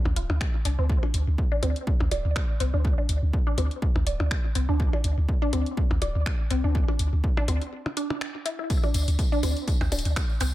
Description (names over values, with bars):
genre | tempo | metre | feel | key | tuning
minimal techno | 123 BPM | 4/4 | swing 55% on 16ths | unclear | A4 = 440 Hz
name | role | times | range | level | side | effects
punchy sub bass | bass | 0.1-10.5 s | D1 to D2 | -25 LUFS | equal | sidechain pumping
percussion blips | percussion | 0.1-10.5 s | none | -35 LUFS | left 2 dB | small room ambience, tape echo
resonant blip pluck | riff | 0.2-10.5 s | C4 to D5 | -32 LUFS | equal | phaser, sidechain pumping, tape echo
garage drum kit | drums | 0.2-10.5 s | finger snaps, hi-hat | -34 LUFS | left 1 dB | small room ambience, tape echo
electronic kick drum | drums | 0.4-10.3 s | none | -25 LUFS | equal | small room ambience
tambourine | percussion | 8.7-10.5 s | none | -37 LUFS | left 2 dB | tape echo
room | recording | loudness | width
digital ambience | echo-heavy mix | -23 LUFS | side -15 dB against mid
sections
0.0-10.5 A section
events
break 7.7-8.7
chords
0.0 D7(no3)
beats
0.41 | 0.90 1.38 1.87 2.36 | 2.85 3.33 3.82 4.31 | 4.80 5.29 5.77 6.26 | 6.75 7.24 7.72 8.21 | 8.70 9.19 9.68 10.16